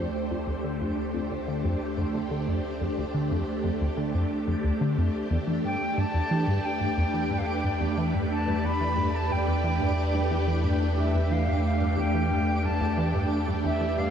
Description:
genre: ambient, sequencer-driven space music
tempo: 90 BPM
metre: 4/4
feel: straight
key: unclear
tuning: A4 = 440 Hz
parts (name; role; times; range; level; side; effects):
- phased string machine; sustained chords; 0.0-14.1 s; A3 to C5; -29 LUFS; equal; ensemble chorus, phaser
- tight sequenced synth; riff; 0.0-14.1 s; D2 to E3; -30 LUFS; equal; chorus, phaser, tape echo
- round analog bass; bass; 0.0-14.1 s; D2 to E2; -30 LUFS; equal; none
- twinkling granular texture; texture; 0.0-14.1 s; D5; -40 LUFS; right 2 dB; built-in reverb
- silver concert flute; melody; 5.6-14.1 s; E5 to B5; -30 LUFS; equal; tape echo
room: wet shimmer reverb, RT60 6.8 s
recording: dark, warm production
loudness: -24 LUFS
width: side -8 dB against mid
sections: 0.0-14.1 A section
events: fade-in on analog synth bass 0.0-14.1; fade-in on synth texture 0.0-14.1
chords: 0.0 Dm7; 5.3 Em7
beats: 0.65 1.31 1.98 | 2.65 3.31 3.98 4.65 | 5.31 5.98 6.65 7.31 | 7.98 8.65 9.31 9.98 | 10.65 11.31 11.98 12.65 | 13.31 13.98

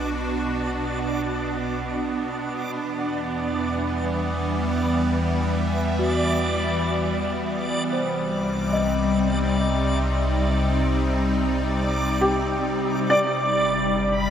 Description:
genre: ambient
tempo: free time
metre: none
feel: none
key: unclear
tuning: A4 = 442 Hz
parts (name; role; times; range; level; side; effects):
- evolving wavetable pad; sustained chords; 0.0-14.3 s; B2 to E5; -24 LUFS; equal; ensemble chorus, built-in reverb
- celesta; arpeggios; 0.0-13.1 s; F#4 to Eb5; -31 LUFS; left 3 dB; diffuse ambient delay
- round analog bass; bass; 0.0-14.3 s; G1 to E2; -28 LUFS; equal; none
- backwards swelling texture; texture; 0.0-14.3 s; D5 to B5; -30 LUFS; right 1 dB; built-in reverb
- felt-muted upright piano; melody; 12.2-14.3 s; G4 to D5; -23 LUFS; equal; diffuse ambient delay
room: wet huge ambient reverb, RT60 8.1 s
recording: none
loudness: -21 LUFS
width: side -9 dB against mid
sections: 0.0-13.1 A section; 13.1-14.3 B section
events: fade-in on celesta 0.0-13.1; fade-in on analog synth bass 0.0-13.1; fade-in on synth texture 0.0-13.1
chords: 0.0 Bm; 2.6 Em; 7.8 Cm; 13.1 G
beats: free time

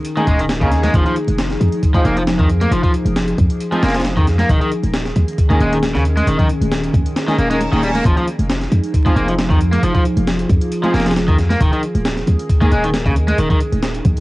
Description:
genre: breakbeat, breaks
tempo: 135 BPM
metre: 4/4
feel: straight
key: F minor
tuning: A4 = 440 Hz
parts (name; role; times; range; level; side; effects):
- warbly tape-like pad; sustained chords; 0.0-14.2 s; Eb3 to Ab4; -22 LUFS; equal; chorus, built-in reverb, phaser, vintage 12-bit sampler grit, sidechain pumping, cassette tape
- breakbeat sampler-style drum kit; drums; 0.0-14.2 s; hi-hat, kick drum, snare drum; -17 LUFS; equal; cassette tape
- electronic hi-hat; drums; 0.1-14.2 s; none; -42 LUFS; right 1 dB; cassette tape
- crunchy overdriven guitar; riff; 0.2-13.6 s; Db3 to Bb3; -21 LUFS; equal; cassette tape, tape echo
- muted studio string section; stabs; 0.2-12.7 s; Bb3 to Bb4; -24 LUFS; right 1 dB; cassette tape, tape echo
- congas; percussion; 0.2-14.1 s; none; -25 LUFS; right 1 dB; none
- warm 808-style bass; bass; 0.3-14.1 s; Eb1 to F2; -18 LUFS; equal; none
- reverse cymbal; sound effects; 7.4-8.1 s; none; -31 LUFS; right 3 dB; none
room: light reverb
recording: home recording on cassette, vinyl crackle, nothing above 10.8 kHz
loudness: -13 LUFS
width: side -19 dB against mid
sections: 0.0-14.2 A section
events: kick drops out 7.2-8.1; reverse cymbal 7.4-8.1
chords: 0.0 Eb7sus4; 0.9 Fm7; 4.5 Eb7sus4; 8.1 Fm7; 11.6 Eb7sus4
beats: 0.05 0.49 | 0.94 1.38 1.83 2.27 | 2.72 3.16 3.61 4.05 | 4.50 4.94 5.38 5.83 | 6.27 6.72 7.16 7.61 | 8.05 8.49 8.94 9.38 | 9.83 10.27 10.72 11.16 | 11.61 12.05 12.49 12.94 | 13.38 13.83

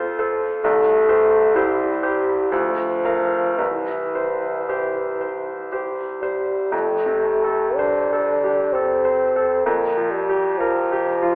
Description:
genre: classical, romantic duo for bassoon and grand piano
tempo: 54-68 BPM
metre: 3/4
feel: rubato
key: F major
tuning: A4 = 436 Hz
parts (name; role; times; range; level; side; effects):
- mellow bassoon; melody; 0.0-11.3 s; E3 to D4; -19 LUFS; equal; none
- bright baby grand piano; accompaniment; 0.0-11.3 s; C2 to F5; -22 LUFS; equal; none
room: wet recital hall reverb, RT60 1.3 s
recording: recorded in a church or concert hall, telephone sound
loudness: -18 LUFS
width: side -26 dB against mid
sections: 0.0-6.7 A section; 6.7-11.3 B section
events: none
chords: 0.0 F; 0.6 C; 2.5 Bb/D; 3.6 C; 6.7 F; 9.7 Gm7/F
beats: | 0.63 1.54 2.51 | 3.58 4.68 5.72 | 6.72 7.77 8.74 | 9.66 10.59

